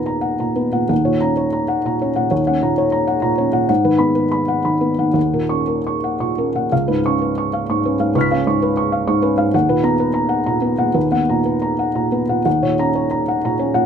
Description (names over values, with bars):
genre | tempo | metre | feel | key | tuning
neoclassical minimalist piano | 113-133 BPM | 3/4 | rubato | Eb minor | A4 = 438 Hz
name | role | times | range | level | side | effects
felt-muted upright piano | solo | 0.0-13.9 s | Db2 to Cb7 | -15 LUFS | equal | none
room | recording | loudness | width
light reverb | none | -15 LUFS | side -7 dB against mid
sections
0.0-6.7 A section; 6.7-13.9 A section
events
none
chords
0.0 Bmaj7/D#; 0.9 Ebm7; 3.7 Abm7; 5.2 Ebm7; 6.7 Db7; 9.5 Bmaj7/D#; 12.5 Ebm7